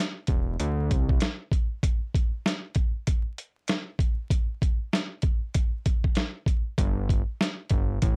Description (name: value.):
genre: hip hop, boom-bap hip-hop.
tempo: 97 BPM.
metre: 4/4.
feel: swing 57% on 16ths.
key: unclear.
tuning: A4 = 440 Hz.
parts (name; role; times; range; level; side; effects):
boom bap sampler-style drum kit; drums; 0.0-8.2 s; hi-hat, kick drum, snare drum; -27 LUFS; equal; none.
fat analog bass; bass; 0.3-1.2, 6.8-8.2 s; E1 to D2; -29 LUFS; equal; none.
room: little or no reverb.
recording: dry, gritty hardware recording, vinyl crackle.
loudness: -27 LUFS.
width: mono.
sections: 0.0-8.2 A section.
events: none.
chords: none.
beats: 0.60 1.22 | 1.83 2.45 3.07 3.69 | 4.31 4.93 5.55 6.16 | 6.78 7.40 8.02.